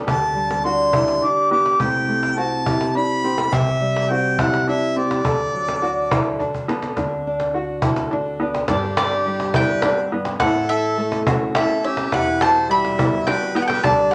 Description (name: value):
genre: acoustic folk duo or small band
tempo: 104 BPM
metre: 3/4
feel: straight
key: unclear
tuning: A4 = 436 Hz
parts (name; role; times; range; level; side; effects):
- fingerpicked steel-string acoustic guitar; accompaniment; 0.0-14.1 s; G2 to A4; -26 LUFS; equal; none
- felt-muted upright piano; arpeggios; 0.0-14.1 s; B3 to A4; -28 LUFS; equal; none
- upright bass; bass; 0.0-14.1 s; E1 to D2; -35 LUFS; equal; none
- clear harmonica; second line; 0.1-14.1 s; G4 to D6; -25 LUFS; equal; none
- cajon; percussion; 0.1-14.1 s; none; -26 LUFS; equal; none
- bowl-back mandolin; melody; 8.7-14.1 s; D5 to B5; -24 LUFS; equal; none
room: wet studio reverb, RT60 0.6 s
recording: none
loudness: -20 LUFS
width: mono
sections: 0.0-7.0 A section; 7.0-8.7 B section; 8.7-14.1 C section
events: harmonica solo 0.0-7.0; drum fill 6.4-7.0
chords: 0.1 Dsus4; 1.8 Am7/C; 3.5 C; 5.2 D; 8.7 Gadd9; 10.4 A; 12.1 Emadd9